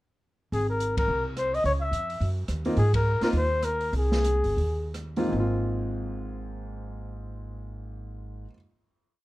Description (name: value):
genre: jazz, small-group swing and bop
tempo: 149-215 BPM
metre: 4/4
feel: swing 59% on 8ths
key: Ab major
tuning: A4 = 440 Hz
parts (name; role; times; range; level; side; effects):
- warm flugelhorn; melody; 0.5-4.9 s; Ab4 to Fb5; -27 LUFS; left 2 dB; none
- upright bass; bass; 0.5-8.4 s; G1 to Ab2; -28 LUFS; equal; none
- open jazz drum kit; drums; 0.5-5.2 s; hi-hat, kick drum, ride cymbal, rim click, snare drum; -35 LUFS; equal; none
- clear grand piano; accompaniment; 2.7-8.6 s; Ab2 to F4; -31 LUFS; equal; none
room: light reverb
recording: none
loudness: -24 LUFS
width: side -17 dB against mid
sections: 0.5-5.3 A section; 5.3-8.5 final chord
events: band accent 1.0, 2.9; slowing down 2.8-5.3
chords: 0.5 Ab; 1.7 Dbm; 2.2 Gb; 2.8 Ab; 5.3 Ab6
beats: | 0.54 0.82 1.09 1.37 | 1.65 1.93 2.21 2.49 | 2.77 3.05 3.33 3.63 | 3.93 4.25 4.58 4.94 | 5.33 5.73 6.13 6.53 | 6.93 7.33 7.74 8.14